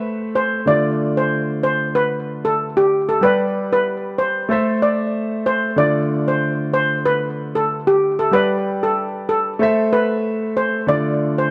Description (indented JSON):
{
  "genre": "dancehall",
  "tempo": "94 BPM",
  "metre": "4/4",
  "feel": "swing 56% on 16ths",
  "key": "D dorian",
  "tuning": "A4 = 440 Hz",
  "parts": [
    { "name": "warm grand piano", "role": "accompaniment", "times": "0.0-11.5 s", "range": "D3 to E5", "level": "-23 LUFS", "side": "equal", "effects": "none" },
    { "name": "steel pan", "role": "melody", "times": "0.4-11.5 s", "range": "G4 to D5", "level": "-21 LUFS", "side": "equal", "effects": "delay" }
  ],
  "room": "light reverb, small room reverb",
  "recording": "none",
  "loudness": "-19 LUFS",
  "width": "mono",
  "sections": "0.0-11.5 A section",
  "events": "none",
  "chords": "0.0 Am; 0.7 Dm; 3.2 G; 4.5 Am; 5.8 Dm; 8.3 G; 9.6 Am; 10.9 Dm"
}